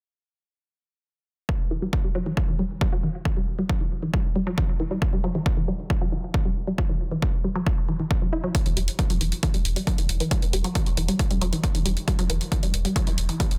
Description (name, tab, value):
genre	driving peak-time techno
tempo	136 BPM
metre	4/4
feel	straight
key	E minor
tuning	A4 = 439 Hz
part	resonant blip pluck	riff	1.5-13.4 s	E3 to E4	-31 LUFS	equal	chorus, phaser, sidechain pumping, delay
part	electronic kick drum	drums	1.5-13.5 s	none	-27 LUFS	equal	none
part	electronic hi-hat	drums	8.5-13.6 s	none	-33 LUFS	equal	none
part	saturated sub bass	bass	8.7-13.6 s	E1	-29 LUFS	equal	tube saturation, sidechain pumping, low-pass filter
room	light reverb, digital ambience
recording	dense, heavily limited modern master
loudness	-25 LUFS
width	mono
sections	1.5-13.6 A section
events	none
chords	1.5 Em